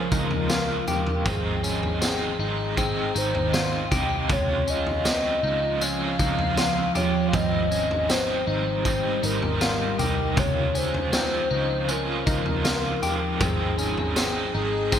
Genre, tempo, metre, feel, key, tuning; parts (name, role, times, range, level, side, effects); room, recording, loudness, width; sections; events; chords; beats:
dream pop; 79 BPM; 4/4; straight; Ab major; A4 = 439 Hz
hollow clarinet-like synth lead; melody; 0.0-15.0 s; Ab4 to F5; -28 LUFS; left 2 dB; chorus, digital delay
biting overdriven guitar; accompaniment; 0.0-15.0 s; Ab2 to F4; -29 LUFS; right 4 dB; tremolo, lush chorus
ethereal airy pad; sustained chords; 0.0-15.0 s; Eb3 to G5; -31 LUFS; right 2 dB; ensemble chorus, built-in reverb, phaser
clean electric guitar; arpeggios; 0.0-15.0 s; C3 to G4; -30 LUFS; left 4 dB; analog chorus, digital delay
picked electric bass; bass; 0.0-15.0 s; Ab1 to Db2; -31 LUFS; equal
raw garage drum kit; drums; 0.1-15.0 s; kick drum, snare drum, tambourine, toms; -27 LUFS; equal; gated reverb
moderate lush hall reverb, RT60 1.8 s; bright 1980s-style digital production; -22 LUFS; side -9 dB against mid
0.0-15.0 A section
0.0 Dbmaj7; 1.3 Abmaj7; 4.3 Dbmaj7; 7.3 Abmaj7; 10.4 Dbmaj7; 13.4 Abmaj7
0.50 | 1.26 2.02 2.78 3.54 | 4.30 5.05 5.82 6.57 | 7.33 8.09 8.85 9.61 | 10.37 11.13 11.89 12.65 | 13.41 14.17 14.93